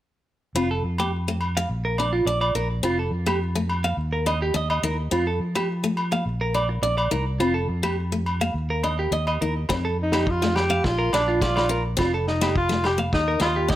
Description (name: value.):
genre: highlife guitar band.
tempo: 105 BPM.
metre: 4/4.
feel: straight.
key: F mixolydian.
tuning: A4 = 440 Hz.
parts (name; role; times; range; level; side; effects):
fingered electric bass; bass; 0.5-13.8 s; F1 to F3; -26 LUFS; equal; none.
picked steel-string acoustic guitar; accompaniment; 0.6-13.8 s; A3 to Eb4; -28 LUFS; left 5 dB; none.
clean electric guitar; arpeggios; 0.6-13.8 s; F4 to F5; -26 LUFS; right 2 dB; harmonic tremolo, plate reverb, tape echo.
agogo bells; percussion; 0.6-13.6 s; none; -31 LUFS; left 1 dB; none.
warm soul drum kit; drums; 9.7-13.8 s; kick drum, snare drum; -27 LUFS; equal; none.
breathy alto saxophone; melody; 10.0-13.8 s; D4 to G4; -24 LUFS; equal; plate reverb.
room: moderate studio reverb, RT60 0.6 s.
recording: none.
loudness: -21 LUFS.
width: side -13 dB against mid.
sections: 0.6-9.7 A section; 9.7-13.8 B section.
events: none.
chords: 0.6 F; 1.7 Bb; 2.8 F; 4.0 Eb5; 5.1 F; 6.3 Bb; 7.4 F; 8.6 Eb5; 9.7 Fadd9; 10.8 Bb; 12.0 F; 13.1 Eb.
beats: | 0.56 1.12 1.70 2.27 | 2.83 3.40 3.98 4.55 | 5.12 5.69 6.26 6.83 | 7.41 7.98 8.55 9.12 | 9.70 10.27 10.84 11.41 | 11.99 12.56 13.13 13.70.